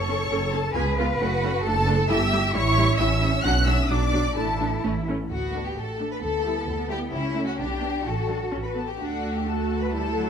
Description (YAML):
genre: quick classical-period movement for string orchestra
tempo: 132 BPM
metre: 2/4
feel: straight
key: D major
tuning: A4 = 440 Hz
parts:
  - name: warm symphonic violin section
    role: melody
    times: 0.0-10.3 s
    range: E5 to F#6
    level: -30 LUFS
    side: left 2 dB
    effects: none
  - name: clear chamber violin section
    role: second line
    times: 0.0-10.3 s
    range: E4 to F#5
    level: -28 LUFS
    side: left 3 dB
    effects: none
  - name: rich symphonic cello section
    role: bass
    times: 0.0-10.3 s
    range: A3 to B4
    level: -30 LUFS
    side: right 2 dB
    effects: none
  - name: rich symphonic double bass section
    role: bass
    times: 0.0-10.3 s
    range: F#1 to D2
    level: -26 LUFS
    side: right 2 dB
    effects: none
  - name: clear symphonic viola section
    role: accompaniment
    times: 0.1-10.3 s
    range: F#3 to A4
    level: -30 LUFS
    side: right 1 dB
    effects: none
room: moderate scoring stage reverb, RT60 1.8 s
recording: none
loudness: -22 LUFS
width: side -7 dB against mid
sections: 0.0-5.3 A section; 5.3-10.3 B section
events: none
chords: 0.0 F#m; 0.7 C#7; 1.2 F#m; 1.6 D/F#; 2.1 Em/G; 2.5 A7; 3.4 Bm; 4.4 Asus4; 4.8 A; 5.3 D5; 6.2 Em7/D; 7.1 A/C#; 7.6 G/B; 8.0 D/A; 8.5 A; 9.0 D